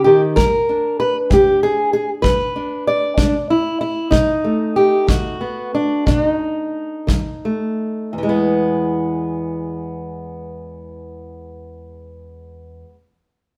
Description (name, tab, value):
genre	acoustic country blues, solo or duo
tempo	56-64 BPM (dotted quarters)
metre	12/8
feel	straight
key	unclear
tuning	A4 = 440 Hz
part	fingerpicked old ladder-braced acoustic guitar	melody	0.0-13.0 s	E2 to D5	-19 LUFS	equal	none
part	kick drum	drums	0.4-7.2 s	none	-21 LUFS	equal	none
room	wet stone room reverb, RT60 1.0 s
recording	band playing live in one room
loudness	-18 LUFS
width	mono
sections	0.0-8.1 A section; 8.1-12.4 B section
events	slowing down 2.9-8.1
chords	0.4 E7; 4.1 B7; 8.1 E